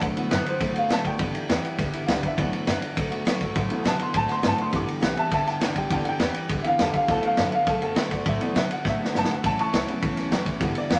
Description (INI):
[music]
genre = rockabilly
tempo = 204 BPM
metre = 4/4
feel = straight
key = D major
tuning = A4 = 441 Hz
[part]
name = picked steel-string acoustic guitar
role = accompaniment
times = 0.0-11.0 s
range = G2 to G4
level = -35 LUFS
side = equal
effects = none
[part]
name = electric guitar through a small old amp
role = riff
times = 0.0-11.0 s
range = G2 to B3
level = -34 LUFS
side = equal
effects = phaser
[part]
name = upright bass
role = bass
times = 0.0-11.0 s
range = E1 to C3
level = -39 LUFS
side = equal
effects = none
[part]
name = vintage drum kit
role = drums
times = 0.0-11.0 s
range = kick drum, ride cymbal, snare drum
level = -28 LUFS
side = equal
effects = none
[part]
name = warm upright piano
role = accompaniment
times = 0.2-11.0 s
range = C#3 to D6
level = -29 LUFS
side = equal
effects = none
[sound]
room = moderate studio reverb, RT60 0.8 s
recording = lossy compression artefacts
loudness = -25 LUFS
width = mono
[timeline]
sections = 0.0-11.0 A section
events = upright piano solo 0.0-11.0; drum fill 8.8-9.4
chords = 0.0 D6; 1.2 G6; 2.4 D6; 4.7 G6; 7.1 D6; 9.4 A6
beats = | 0.02 0.31 0.61 0.90 | 1.20 1.49 1.79 2.08 | 2.38 2.67 2.97 3.26 | 3.56 3.85 4.14 4.44 | 4.73 5.03 5.32 5.62 | 5.91 6.21 6.50 6.79 | 7.09 7.38 7.67 7.97 | 8.26 8.56 8.85 9.14 | 9.44 9.73 10.03 10.32 | 10.61 10.90